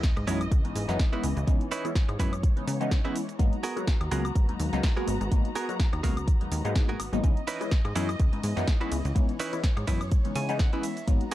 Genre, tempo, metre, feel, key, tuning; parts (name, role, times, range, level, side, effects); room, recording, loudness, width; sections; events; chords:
filtered disco house; 125 BPM; 4/4; swing 56% on 16ths; C# dorian; A4 = 440 Hz
muted chamber string section; sustained chords; 0.0-11.3 s; E3 to A#5; -39 LUFS; equal; sidechain pumping
direct-recorded clean electric guitar; riff; 0.0-11.3 s; B3 to G#5; -34 LUFS; right 5 dB; sidechain pumping
electronic kick drum; drums; 0.0-11.2 s; -24 LUFS; equal
punchy analog drum machine; drums; 0.0-11.3 s; hi-hat, ride cymbal, shaker, snare drum, woodblock; -37 LUFS; equal; sidechain pumping on perc, sidechain pumping on hats, sidechain pumping on cymbals
sub drop; sound effects; 0.0-1.5 s; -41 LUFS; equal
plucky analog bass; bass; 0.2-11.2 s; G#1 to C#3; -31 LUFS; equal; sidechain pumping
funky polysynth comp; accompaniment; 0.3-11.2 s; E3 to F#4; -32 LUFS; left 2 dB; chorus, phaser, sidechain pumping
little or no reverb; dark, warm production; -24 LUFS; side -14 dB against mid
0.0-11.3 A section
impact 0.0-1.5; clean electric guitar fill 10.1-11.1
0.0 C#m9; 3.4 G#m9; 7.2 C#m9